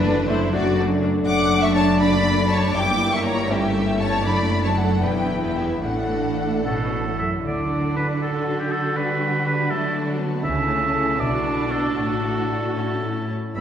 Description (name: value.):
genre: classical, dramatic, fast romantic movement for symphony orchestra.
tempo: 73-83 BPM (dotted quarters).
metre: 6/8.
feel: rubato.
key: D major.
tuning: A4 = 441 Hz.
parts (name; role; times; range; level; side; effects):
warm symphonic violin section; melody; 0.0-13.6 s; B4 to D6; -28 LUFS; left 2 dB; none.
warm symphonic violin section; second line; 0.0-13.1 s; B3 to G5; -27 LUFS; left 2 dB; none.
clear symphonic viola section; accompaniment; 0.0-13.6 s; A3 to A4; -30 LUFS; right 2 dB; none.
mellow French horn section; sustained chords; 0.0-13.6 s; F#3 to F#4; -28 LUFS; equal; none.
concert harp; arpeggios; 0.0-13.6 s; E2 to D5; -27 LUFS; left 2 dB; none.
rich studio cello section; bass; 0.0-13.6 s; E2 to D3; -27 LUFS; equal; none.
rich symphonic double bass section; bass; 0.0-7.9, 10.4-13.6 s; E1 to D2; -28 LUFS; right 1 dB; none.
clear oboe; second line; 6.7-13.6 s; G4 to E5; -25 LUFS; right 3 dB; none.
room: wet scoring stage reverb, RT60 2.0 s.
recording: heard from further back in the room.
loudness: -19 LUFS.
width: side -9 dB against mid.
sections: 0.0-7.5 A section; 7.5-13.6 B section.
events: none.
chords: 0.0 D/F#; 2.8 Em7b5/G; 3.5 A7/G; 4.2 D/F#; 5.0 Em; 5.8 D/A; 6.7 A; 7.5 D; 9.0 G/D; 9.7 D; 10.4 A/C#; 11.2 Bm7; 12.0 D/A; 12.8 A.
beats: 0.54 | 1.27 2.01 | 2.76 3.50 | 4.25 5.03 | 5.83 6.65 | 7.45 8.21 | 8.96 9.70 | 10.45 11.20 | 11.98 12.77 | 13.56.